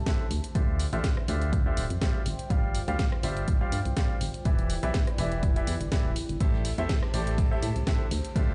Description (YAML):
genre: piano house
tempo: 123 BPM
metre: 4/4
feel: swing 54% on 16ths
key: A minor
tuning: A4 = 442 Hz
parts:
  - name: solid FM bass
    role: bass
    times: 0.0-8.5 s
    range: D1 to A2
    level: -32 LUFS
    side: equal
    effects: sidechain pumping
  - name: warbly tape-like pad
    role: texture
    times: 0.0-8.5 s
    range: E4 to A5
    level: -44 LUFS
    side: equal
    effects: chorus, built-in reverb, sidechain pumping
  - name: bright grand piano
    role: riff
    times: 0.1-8.5 s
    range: D3 to F5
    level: -37 LUFS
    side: equal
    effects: sidechain pumping, low-pass filter, tape echo
  - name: electronic kick drum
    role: drums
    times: 0.1-8.5 s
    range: none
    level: -30 LUFS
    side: equal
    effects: none
  - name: house drum kit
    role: drums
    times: 0.1-8.5 s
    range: hi-hat, rim click, snare drum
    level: -39 LUFS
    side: equal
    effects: none
  - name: vintage brush drum kit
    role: drums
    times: 6.4-8.5 s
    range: hi-hat, ride cymbal, snare drum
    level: -51 LUFS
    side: equal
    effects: high-pass filter on cymbals, high-pass filter on hats, high-pass filter on snare, high-pass filter on room
room: studio ambience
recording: played on a big sound system in a bare room, stone room reverb, nothing above 10.3 kHz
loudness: -28 LUFS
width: mono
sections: 0.0-8.5 A section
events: none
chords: 0.3 Dm11; 2.3 G7sus4; 4.5 Em7; 6.4 Am7